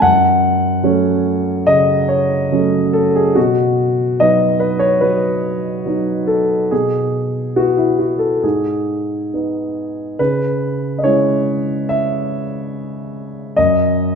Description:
neoclassical minimalist piano; 71 BPM; 4/4; rubato; C# minor; A4 = 440 Hz
dark concert grand piano; solo; 0.0-14.2 s; F#2 to F#5; -14 LUFS; equal
moderate scoring stage reverb, RT60 1.5 s; minimal, uncompressed stereo recording; -14 LUFS; side -6 dB against mid
0.0-10.2 A section; 10.2-14.2 B section
0.0 F#m; 3.4 B; 6.7 E5/B; 8.4 G#m; 10.2 C#m; 13.6 N.C.
| 0.03 0.86 1.69 2.53 | 3.36 4.19 5.02 5.86 | 6.71 7.56 8.43 9.31 | 10.19 11.03 11.88 12.73 | 13.57

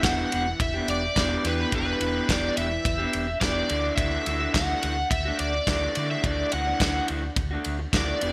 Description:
indie rock; 106 BPM; 4/4; straight; A4 = 440 Hz
crunchy overdriven guitar; melody; 0.0-8.3 s; B4 to F#5; -30 LUFS; equal; analog chorus, delay
electric guitar through a small old amp; riff; 0.0-8.3 s; D3 to G4; -32 LUFS; equal
fingered electric bass; bass; 0.0-8.3 s; E1 to D3; -34 LUFS; equal
loose indie drum kit; drums; 0.0-8.3 s; kick drum, ride cymbal, snare drum; -31 LUFS; equal; gated reverb
moderate plate reverb, RT60 2.0 s, small room ambience; bright 1980s-style digital production; -26 LUFS; mono
0.0-8.3 A section
0.0 Em7; 3.7 Dadd9
0.05 0.61 1.17 | 1.74 2.30 2.86 3.43 | 3.99 4.55 5.12 5.68 | 6.24 6.81 7.37 7.94

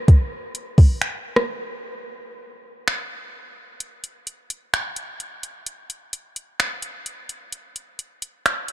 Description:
hip hop; 129 BPM; 4/4; half-time
smooth R&B drum kit; drums; 0.1-8.7 s; finger snaps, hi-hat, kick drum, rim click; -19 LUFS; equal
digital ambience; dark, warm production; -22 LUFS; side -14 dB against mid
0.0-1.9 A section; 1.9-8.7 B section
break 1.5-1.9, 1.9-8.7
| 0.08 0.55 1.01 1.48 | 1.94 2.41 2.87 3.34 | 3.80 4.27 4.73 5.20 | 5.66 6.13 6.59 7.06 | 7.52 7.99 8.45

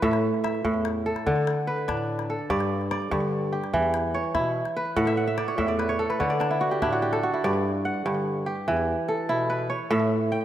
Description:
west african traditional, West African string and xylophone music; 97 BPM (dotted quarters); 12/8; straight; G lydian; A4 = 440 Hz
kora; arpeggios; 0.0-10.4 s; G2 to G5; -24 LUFS; right 1 dB; slapback echo
mellow bass clarinet; bass; 0.0-10.4 s; E2 to D3; -32 LUFS; left 2 dB
calabash; percussion; 0.0-7.2 s; -36 LUFS; left 6 dB
wet lush hall reverb, RT60 2.3 s; rough home demo mix; -23 LUFS; side -11 dB against mid
0.0-7.4 A section; 7.4-10.4 B section
kora fill 5.0-7.4
0.0 A5; 1.3 D5; 2.5 G5; 3.7 Em; 5.0 A5; 6.2 D5; 7.4 G5; 8.7 Em
| 0.03 0.65 1.27 1.88 | 2.50 3.12 3.73 4.35 | 4.97 5.59 6.21 6.82 | 7.44 8.06 8.67 9.29 | 9.91

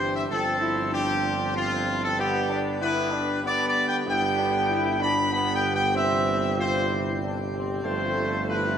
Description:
classical; 95 BPM; 3/4; straight; G mixolydian; A4 = 440 Hz
mellow trumpet section; melody; 0.0-8.8 s; F4 to B5; -25 LUFS; equal
clear trombone section; sustained chords; 0.0-8.8 s; D3 to E4; -34 LUFS; right 2 dB
dark French horn section; sustained chords; 0.0-8.8 s; B3 to F4; -31 LUFS; left 4 dB
pipe organ, plenum; sustained chords; 0.0-8.8 s; C3 to C5; -32 LUFS; equal
mellow tuba; bass; 0.0-8.8 s; G1; -30 LUFS; right 4 dB
wet scoring stage reverb, RT60 1.9 s; -22 LUFS; side -8 dB against mid
0.0-8.8 A section
0.3 F/G; 2.2 G; 6.0 C/G; 7.8 F/G
| 0.30 0.93 1.55 | 2.18 2.81 3.44 | 4.07 4.69 5.32 | 5.95 6.59 7.22 | 7.85 8.49

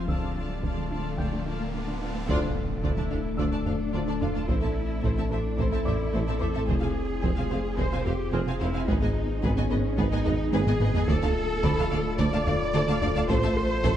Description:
cinematic, hybrid orchestral and electronic film score; 109 BPM; 4/4; straight; D dorian; A4 = 439 Hz
clear symphonic violin section; melody; 0.0-13.9 s; B4 to A5; -40 LUFS; left 4 dB
clear symphonic violin section; second line; 0.0-13.9 s; F4 to F5; -39 LUFS; left 2 dB
rich symphonic viola section; accompaniment; 0.0-13.9 s; A3 to F4; -36 LUFS; right 1 dB
dark French horn section; sustained chords; 0.0-14.0 s; D3 to A4; -35 LUFS; left 4 dB
ethereal airy pad; sustained chords; 0.0-14.0 s; F3 to E5; -35 LUFS; left 2 dB; ensemble chorus, built-in reverb
soft round pluck; arpeggios; 0.0-13.9 s; D3 to A4; -35 LUFS; right 4 dB; chorus
rich symphonic cello section; bass; 0.0-14.0 s; C#4 to D5; -33 LUFS; right 2 dB
saturated sub bass; bass; 0.0-14.0 s; D1 to A1; -33 LUFS; equal
riser and impact; sound effects; 0.3-4.5 s; -37 LUFS; equal
felt-muted upright piano; texture; 0.0-14.0 s; A4 to C7; -41 LUFS; left 1 dB
solo taiko drums; drums; 0.1-14.0 s; -31 LUFS; equal
breathy tuba; bass; 2.3-13.9 s; F1 to D2; -34 LUFS; right 3 dB
rich studio double bass section; bass; 2.3-13.9 s; F1 to D2; -32 LUFS; right 2 dB
moderate scoring stage reverb, RT60 1.6 s; dark, warm production; -24 LUFS; side -10 dB against mid
0.0-2.3 A section; 2.3-14.0 A section
riser 0.3-2.3; band accent 2.3-2.8; impact 2.3-4.5; drum fill 10.5-11.1
0.1 Dm; 4.5 Am; 6.7 Fm; 8.9 G#m; 11.1 Dm; 13.3 Am
| 0.09 0.64 1.19 1.74 | 2.29 2.84 3.39 3.94 | 4.49 5.04 5.59 6.14 | 6.69 7.24 7.79 8.34 | 8.89 9.44 9.99 10.54 | 11.09 11.64 12.20 12.74 | 13.30 13.85

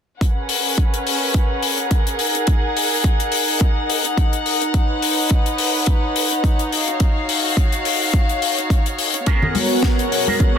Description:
nu-disco, nu disco; 106 BPM; 4/4; swing 56% on 16ths; G# dorian; A4 = 440 Hz
warm chamber string section; sustained chords; 0.2-10.6 s; B3 to F#5; -21 LUFS; equal; sidechain pumping, low-pass filter
electronic kick drum; drums; 0.2-10.5 s; -17 LUFS; equal
tight funk drum kit; drums; 0.2-10.5 s; hi-hat, snare drum; -21 LUFS; left 6 dB
warm analog pad; accompaniment; 9.3-10.6 s; B3 to C#5; -20 LUFS; equal; chorus, sidechain pumping
electric guitar with an envelope filter; riff; 9.3-10.6 s; B3 to A#4; -24 LUFS; right 3 dB; analog chorus, ping-pong delay
congas; percussion; 9.4-10.4 s; -23 LUFS; left 3 dB
light reverb, studio reverb; dense, heavily limited modern master; -16 LUFS; side -8 dB against mid
0.2-10.6 A section
filter sweep on string section 0.2-10.6
0.2 G#m11; 2.2 F#69; 4.7 C#9sus4; 6.7 D#m9; 9.3 G#m11
| 0.21 0.78 1.34 1.91 | 2.48 3.04 3.61 4.17 | 4.74 5.31 5.87 6.44 | 7.00 7.57 8.14 8.70 | 9.27 9.83 10.40

